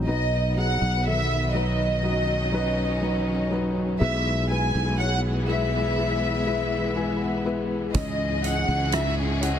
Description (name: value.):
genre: pop ballad.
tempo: 61 BPM.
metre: 4/4.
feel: straight.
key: unclear.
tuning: A4 = 441 Hz.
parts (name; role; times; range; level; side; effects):
felt-muted upright piano; accompaniment; 0.0-9.6 s; G#2 to G#5; -28 LUFS; left 2 dB; none.
sustaining fretless electric bass; bass; 0.0-9.6 s; B1 to C#2; -27 LUFS; right 1 dB; none.
dark studio violin section; melody; 0.1-9.6 s; D#5 to G#5; -27 LUFS; equal; tape echo.
warm studio string section; sustained chords; 0.1-9.6 s; C#3 to G#4; -33 LUFS; equal; none.
nylon-string guitar; arpeggios; 7.9-9.6 s; C#3 to G#4; -35 LUFS; right 2 dB; none.
soft-mallet drum kit; drums; 7.9-9.6 s; hi-hat, kick drum, rim click; -29 LUFS; right 1 dB; none.
room: light reverb, small room ambience.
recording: dense, heavily limited modern master.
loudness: -22 LUFS.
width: side -9 dB against mid.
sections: 0.1-9.6 A section.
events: felt piano fill 6.5-7.9.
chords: 0.1 B; 4.0 E/B; 7.9 C#madd9.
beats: | 0.08 1.06 2.04 3.03 | 4.01 5.00 5.98 6.96 | 7.95 8.93.